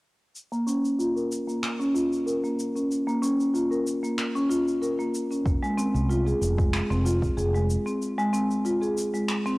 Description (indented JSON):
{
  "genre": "organic downtempo",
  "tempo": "94 BPM",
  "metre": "4/4",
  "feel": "swing 54% on 16ths",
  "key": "Bb minor",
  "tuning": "A4 = 442 Hz",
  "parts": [
    { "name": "electronic shaker and finger snaps", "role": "drums", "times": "0.4-9.6 s", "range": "none", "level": "-35 LUFS", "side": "equal", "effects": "none" },
    { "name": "marimba with medium mallets", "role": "arpeggios", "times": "0.5-9.6 s", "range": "Ab3 to Bb4", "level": "-24 LUFS", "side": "equal", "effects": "low-pass filter, tape echo" },
    { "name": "mellow fretless electric bass", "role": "bass", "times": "5.5-7.8 s", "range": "F1 to C2", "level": "-25 LUFS", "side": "equal", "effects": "tube saturation, sidechain pumping" },
    { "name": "electronic kick drum", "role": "drums", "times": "5.5-7.3 s", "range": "none", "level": "-26 LUFS", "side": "equal", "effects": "none" }
  ],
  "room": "light reverb",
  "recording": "home recording on cassette",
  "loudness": "-23 LUFS",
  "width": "side -21 dB against mid",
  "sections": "0.3-9.6 A section",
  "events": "filter sweep on marimba 0.3-9.6",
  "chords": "0.3 Bbm; 5.5 Fm"
}